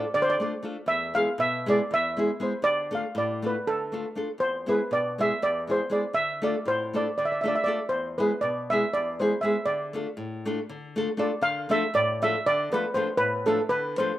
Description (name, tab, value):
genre	balkan folk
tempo	239 BPM (eighths)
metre	7/8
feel	straight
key	D dorian sharp4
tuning	A4 = 440 Hz
part	steel pan	melody	0.0-14.2 s	A4 to F5	-25 LUFS	right 1 dB	none
part	nylon-string guitar	accompaniment	0.0-14.1 s	E2 to A4	-28 LUFS	left 1 dB	slapback echo
room	little or no reverb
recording	recorded outdoors, with no room sound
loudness	-24 LUFS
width	side -14 dB against mid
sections	0.0-11.4 A section; 11.4-14.2 B section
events	none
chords	0.0 Dm; 0.9 E; 2.6 Dm; 4.4 E; 6.1 Dm; 7.9 E; 9.6 Dm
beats	0.10 0.35 0.60 | 0.86 1.11 1.36 1.61 1.86 2.11 2.36 | 2.61 2.87 3.12 3.37 3.62 3.87 4.12 | 4.37 4.62 4.87 5.12 5.38 5.63 5.88 | 6.13 6.38 6.63 6.88 7.13 7.38 7.63 | 7.88 8.14 8.39 8.64 8.89 9.14 9.39 | 9.65 9.90 10.15 10.40 10.65 10.90 11.15 | 11.41 11.66 11.91 12.16 12.41 12.66 12.92 | 13.17 13.42 13.67 13.92 14.17